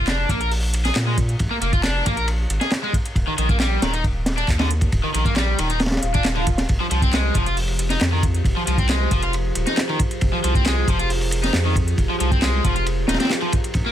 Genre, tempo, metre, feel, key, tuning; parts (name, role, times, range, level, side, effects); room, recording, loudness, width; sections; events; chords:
breakbeat, breaks; 136 BPM; 4/4; straight; F dorian; A4 = 439 Hz
crunchy overdriven guitar; riff; 0.0-13.9 s; D3 to Bb4; -24 LUFS; left 1 dB; low-pass filter, ping-pong delay
saturated sub bass; bass; 0.0-13.8 s; Eb1 to Bb2; -22 LUFS; equal
crunchy breakbeat drum kit; drums; 0.1-13.9 s; hi-hat, kick drum, ride cymbal, snare drum; -22 LUFS; equal
house drum kit; drums; 0.1-13.8 s; handclaps, hi-hat; -29 LUFS; equal; overdrive
swell; sound effects; 6.0-6.7 s; -29 LUFS; equal
warbly tape-like pad; sustained chords; 7.1-13.9 s; F3 to C5; -29 LUFS; right 1 dB; chorus, built-in reverb, vintage 12-bit sampler grit, sidechain pumping
little or no reverb; -18 LUFS; side -11 dB against mid
0.0-13.9 A section
swell 6.0-6.7
0.0 Bb; 3.2 Eb; 6.7 Fmadd9